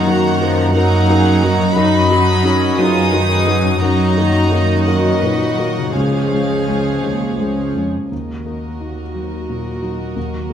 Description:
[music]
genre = cinematic, emotional film score for orchestra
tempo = 57 BPM (dotted quarters)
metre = 6/8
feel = uneven beats, rubato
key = unclear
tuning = A4 = 440 Hz
[part]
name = clear studio violin section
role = melody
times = 0.0-10.5 s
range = Eb5 to D#6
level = -23 LUFS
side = left 3 dB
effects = none
[part]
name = warm studio violin section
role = second line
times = 0.0-10.5 s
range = F#4 to F#5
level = -25 LUFS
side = left 1 dB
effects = none
[part]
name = felt-muted upright piano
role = accompaniment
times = 0.0-10.5 s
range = C#2 to A#4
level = -20 LUFS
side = left 2 dB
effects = none
[part]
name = warm studio viola section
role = accompaniment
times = 0.0-10.5 s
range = D#3 to G#4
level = -22 LUFS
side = right 3 dB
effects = none
[part]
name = mellow French horn section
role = sustained chords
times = 0.0-7.7 s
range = F#3 to D#4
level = -22 LUFS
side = left 1 dB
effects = none
[part]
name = concert harp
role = arpeggios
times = 0.0-10.5 s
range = F#2 to A#4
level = -23 LUFS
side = left 6 dB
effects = none
[part]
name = dark studio cello section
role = bass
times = 0.0-10.5 s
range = C#2 to F#2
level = -20 LUFS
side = right 4 dB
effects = none
[sound]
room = moderate scoring stage reverb, RT60 1.9 s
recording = close, detailed microphones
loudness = -13 LUFS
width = side -9 dB against mid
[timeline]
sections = 0.0-8.1 A section; 8.1-10.5 B section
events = none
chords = 0.0 D#m/F#; 1.8 B/F#; 3.8 D#m/F#; 6.0 C#; 8.1 Ebm

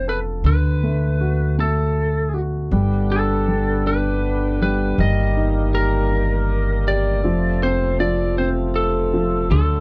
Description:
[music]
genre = pop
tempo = 53 BPM (dotted quarters)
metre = 6/8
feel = straight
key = unclear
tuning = A4 = 440 Hz
[part]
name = lightly driven lead guitar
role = melody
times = 0.0-9.8 s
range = A4 to Eb5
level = -26 LUFS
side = equal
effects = none
[part]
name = warm grand piano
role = accompaniment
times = 0.0-9.8 s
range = D3 to A4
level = -25 LUFS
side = equal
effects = none
[part]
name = upright bass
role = bass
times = 0.0-9.8 s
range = F1 to D2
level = -23 LUFS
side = equal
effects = none
[part]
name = overdriven tonewheel organ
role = sustained chords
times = 2.7-9.8 s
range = C3 to B3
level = -29 LUFS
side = equal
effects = slow rotary speaker
[sound]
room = little or no reverb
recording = dry, close 1970s-style studio recording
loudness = -20 LUFS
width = mono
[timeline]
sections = 0.0-9.8 A section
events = none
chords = 0.4 D; 2.7 G; 5.0 Eb/G; 7.2 F

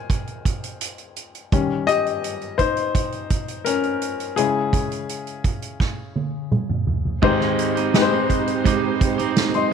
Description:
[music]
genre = piano-driven pop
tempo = 84 BPM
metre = 4/4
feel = straight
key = Ab major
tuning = A4 = 441 Hz
[part]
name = warm baby grand piano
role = accompaniment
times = 0.0-9.7 s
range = Ab2 to C6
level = -22 LUFS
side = left 7 dB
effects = none
[part]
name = soft-mallet drum kit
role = drums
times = 0.1-9.7 s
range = crash cymbal, hi-hat, kick drum, snare drum, toms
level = -22 LUFS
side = right 2 dB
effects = none
[part]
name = warm studio string section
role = sustained chords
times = 7.2-9.7 s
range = Ab3 to C5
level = -28 LUFS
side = right 2 dB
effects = none
[part]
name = electric guitar at the edge of break-up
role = riff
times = 7.2-9.7 s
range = Ab3 to G4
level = -22 LUFS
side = right 15 dB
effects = none
[sound]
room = moderate plate reverb, RT60 1.9 s, studio ambience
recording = 1960s-style stereo with parts hard left and right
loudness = -19 LUFS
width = side -7 dB against mid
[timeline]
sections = 0.0-7.2 A section; 7.2-9.7 B section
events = grand piano solo 0.0-7.2; drum fill 5.8-7.2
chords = 0.0 Fm7; 1.5 Eb7; 4.4 Dbm; 7.2 Abmaj7

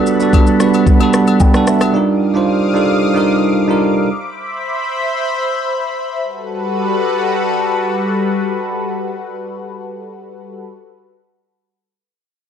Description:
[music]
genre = amapiano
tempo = 112 BPM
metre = 4/4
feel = straight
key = unclear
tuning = A4 = 440 Hz
[part]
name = bell-like tine electric piano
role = accompaniment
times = 0.0-4.1 s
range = G3 to B5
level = -12 LUFS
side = right 2 dB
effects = phaser
[part]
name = lush unison pad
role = sustained chords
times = 0.0-10.6 s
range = G3 to Eb6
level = -19 LUFS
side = left 2 dB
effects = chorus, phaser
[part]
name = afro-pop drum kit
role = drums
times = 0.1-1.9 s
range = kick drum, rim click, shaker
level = -13 LUFS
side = left 1 dB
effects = overdrive
[part]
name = agogo bells and woodblock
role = percussion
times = 0.3-1.9 s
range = none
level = -26 LUFS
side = left 8 dB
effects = none
[sound]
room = light reverb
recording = dark, warm production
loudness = -13 LUFS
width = side -8 dB against mid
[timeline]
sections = 0.0-6.2 A section; 6.2-10.5 B section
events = tine electric piano fill 0.9-1.9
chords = 0.0 Gmaj9; 1.9 Ebmaj9; 4.1 Cmaj9; 6.2 Gmaj9

